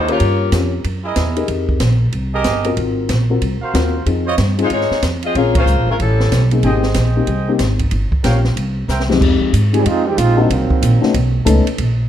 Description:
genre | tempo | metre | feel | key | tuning
jazz, big band swing | 186 BPM | 4/4 | swing 63% on 8ths | unclear | A4 = 441 Hz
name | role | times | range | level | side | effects
warm saxophone section | melody | 0.0-0.5, 4.6-6.5 s | G3 to Eb5 | -18 LUFS | left 3 dB | none
warm trumpet section | stabs | 0.0-9.0 s | Eb4 to G5 | -23 LUFS | right 4 dB | none
upright bass | bass | 0.0-12.1 s | G1 to Ab2 | -16 LUFS | equal | none
dark baby grand piano | accompaniment | 0.1-11.6 s | F2 to Bb4 | -19 LUFS | left 5 dB | none
open jazz drum kit | drums | 0.1-11.9 s | crash cymbal, hi-hat, kick drum, ride cymbal, snare drum | -22 LUFS | right 1 dB | none
mellow trombone section | second line | 9.7-11.1 s | Eb3 to Ab4 | -17 LUFS | right 5 dB | none
room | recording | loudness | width
light reverb | dark, warm production | -13 LUFS | side -10 dB against mid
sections
0.0-9.2 A section; 9.2-12.1 B section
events
band accent 5.5; drum fill 8.9-9.2; trombone section solo 9.2-12.1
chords
0.2 Gm7b5; 0.8 Gb13; 1.5 Fm11; 2.8 Ab13; 4.1 Dbmaj9; 5.3 Bbm7; 6.0 A9; 6.6 Abmaj7; 7.9 Gm7b5; 8.6 C7; 9.2 Fm9; 10.5 Cm7b5; 11.1 B9

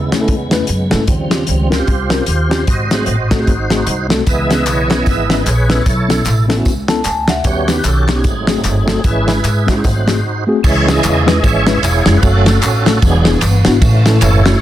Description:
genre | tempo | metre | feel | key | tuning
uptempo gospel | 151 BPM | 4/4 | swing 60% on 8ths | C# minor | A4 = 441 Hz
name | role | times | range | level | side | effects
mellow tine electric piano | accompaniment | 0.0-14.6 s | G#2 to A5 | -18 LUFS | left 2 dB | medium stereo tremolo
tonewheel organ | sustained chords | 0.0-14.6 s | C#3 to E5 | -18 LUFS | right 3 dB | slow rotary speaker, overdrive, chorus vibrato
upright bass | bass | 0.0-14.6 s | E1 to G#2 | -16 LUFS | equal | none
warm soul drum kit | drums | 0.1-14.5 s | crash cymbal, hi-hat, kick drum, ride cymbal, snare drum | -16 LUFS | equal | none
tambourine and handclaps | percussion | 4.3-14.5 s | none | -26 LUFS | left 1 dB | none
room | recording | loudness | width
studio reverb | dense, heavily limited modern master | -11 LUFS | side -13 dB against mid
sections
0.0-10.6 A section; 10.6-14.6 B section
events
tonewheel organ solo 0.0-10.6, 10.6-14.6; tine electric piano fill 6.7-7.5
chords
0.0 Amaj7; 1.1 D#13; 2.7 G#7b9; 4.3 C#m7; 5.9 B9sus4; 7.5 D#7alt; 8.2 G#7b9; 9.0 C#m/G#; 9.8 G#7b9; 10.6 C#m; 12.2 F#m; 13.0 E7; 13.8 A

